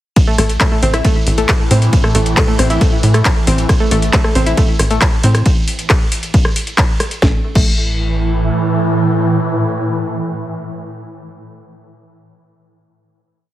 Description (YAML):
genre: driving peak-time techno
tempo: 136 BPM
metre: 4/4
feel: straight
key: unclear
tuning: A4 = 440 Hz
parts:
  - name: swarming drone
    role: drone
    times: 0.9-10.3 s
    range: A2 to E3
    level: -19 LUFS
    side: right 1 dB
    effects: built-in reverb, sidechain pumping
  - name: electronic kick drum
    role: drums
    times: 0.2-7.7 s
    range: none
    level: -14 LUFS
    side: equal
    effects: none
  - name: techno drum kit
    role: drums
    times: 0.2-7.7 s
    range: crash cymbal, handclaps, hi-hat, ride cymbal, rim click, snare drum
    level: -18 LUFS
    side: equal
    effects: none
  - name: analog pluck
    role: riff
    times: 0.3-7.7 s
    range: A3 to E4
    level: -19 LUFS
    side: equal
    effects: chorus, tube saturation, cassette tape, sidechain pumping, digital delay
  - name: tight sequencer bass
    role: bass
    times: 0.4-8.5 s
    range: A1 to A2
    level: -15 LUFS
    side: equal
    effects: sidechain pumping
room: light reverb, digital ambience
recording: heavily compressed radio sound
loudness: -12 LUFS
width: side -14 dB against mid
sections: 0.2-7.2 drop; 7.2-10.8 final chord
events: drop 0.2-7.2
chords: 0.2 A5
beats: | 0.16 0.60 1.05 1.49 | 1.93 2.37 2.81 3.25 | 3.69 4.13 4.58 5.02 | 5.46 5.90 6.34 6.78 | 7.22 7.66 8.11 8.55 | 8.99 9.43 9.87